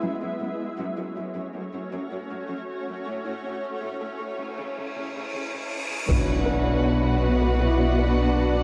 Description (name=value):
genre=cinematic, hybrid orchestral and electronic film score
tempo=79 BPM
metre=4/4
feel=straight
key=unclear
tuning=A4 = 440 Hz
part: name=shimmering ambient pad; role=sustained chords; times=0.0-8.6 s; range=F#3 to D5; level=-34 LUFS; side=equal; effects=chorus, built-in reverb
part: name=resonant blip pluck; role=arpeggios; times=0.0-8.6 s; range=C#3 to B4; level=-39 LUFS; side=equal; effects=none
part: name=rich symphonic cello section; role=bass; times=0.0-8.6 s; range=F#2 to C#3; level=-34 LUFS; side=equal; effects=none
part: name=cymbal swell and impact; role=sound effects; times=4.8-8.6 s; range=none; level=-35 LUFS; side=equal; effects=none
part: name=warm symphonic violin section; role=melody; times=6.1-8.6 s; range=F#5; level=-36 LUFS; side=equal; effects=none
part: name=warm symphonic violin section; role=second line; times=6.1-8.6 s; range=B4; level=-34 LUFS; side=equal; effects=none
part: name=rich symphonic viola section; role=accompaniment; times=6.1-8.6 s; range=F#4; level=-34 LUFS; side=equal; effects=none
part: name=dark French horn section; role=sustained chords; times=6.1-8.6 s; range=B3 to E4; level=-29 LUFS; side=equal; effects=none
part: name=clear symphonic double bass section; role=bass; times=6.1-8.6 s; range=B1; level=-31 LUFS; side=equal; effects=none
part: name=saturated sub bass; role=bass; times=6.1-8.6 s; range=B1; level=-28 LUFS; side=equal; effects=none
part: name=taiko ensemble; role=drums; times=6.1-7.6 s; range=none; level=-31 LUFS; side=equal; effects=none
room=moderate scoring stage reverb, RT60 1.9 s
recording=worn, warbling old tape, cassette tape, warbly pitch drift, high-pass filter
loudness=-26 LUFS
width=mono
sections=0.0-6.1 A section; 6.1-8.6 B section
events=build-up 0.0-6.1; filter sweep 0.0-6.1; cymbal swell 4.8-6.1; impact 6.1-8.6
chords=0.0 F#m; 3.1 A; 4.6 C#m; 6.1 Bm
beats=| 0.02 0.78 1.54 2.30 | 3.06 3.82 4.58 5.34 | 6.10 6.86 7.62 8.38